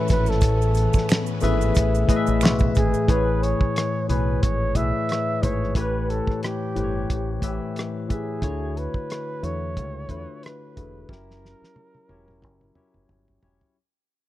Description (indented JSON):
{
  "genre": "R&B, neo-soul",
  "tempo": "90 BPM",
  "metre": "4/4",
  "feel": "swing 56% on 16ths",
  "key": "A major",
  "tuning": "A4 = 440 Hz",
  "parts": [
    { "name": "breathy flugelhorn", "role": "melody", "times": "0.0-13.1 s", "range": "G4 to E5", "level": "-29 LUFS", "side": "right 2 dB", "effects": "none" },
    { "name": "barky tine electric piano", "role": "accompaniment", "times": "0.0-13.8 s", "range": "A2 to G#5", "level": "-26 LUFS", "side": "left 4 dB", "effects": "lush chorus" },
    { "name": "phased string machine", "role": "sustained chords", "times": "0.0-3.1 s", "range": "E3 to C#4", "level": "-33 LUFS", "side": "left 2 dB", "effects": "ensemble chorus, phaser" },
    { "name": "deep dub fingered electric bass", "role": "bass", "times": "0.1-13.6 s", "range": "E1 to E2", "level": "-25 LUFS", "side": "right 1 dB", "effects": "none" },
    { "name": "cloth-damped thuddy drum kit", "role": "drums", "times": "0.1-13.7 s", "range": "finger snaps, hi-hat, kick drum, rim click, snare drum, toms", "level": "-21 LUFS", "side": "equal", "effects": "none" },
    { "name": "maracas and finger snaps", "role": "percussion", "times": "0.1-3.1 s", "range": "none", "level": "-37 LUFS", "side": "right 13 dB", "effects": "none" }
  ],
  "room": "small room ambience",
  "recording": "dry, close 1970s-style studio recording",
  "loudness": "-20 LUFS",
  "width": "side -14 dB against mid",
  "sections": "0.0-3.1 A section; 3.1-13.8 B section",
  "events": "fade-out 3.1-13.8; drum fill 11.1-13.8",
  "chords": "0.0 Amaj9; 5.8 A9; 8.4 Dmaj9; 11.1 F#7b9"
}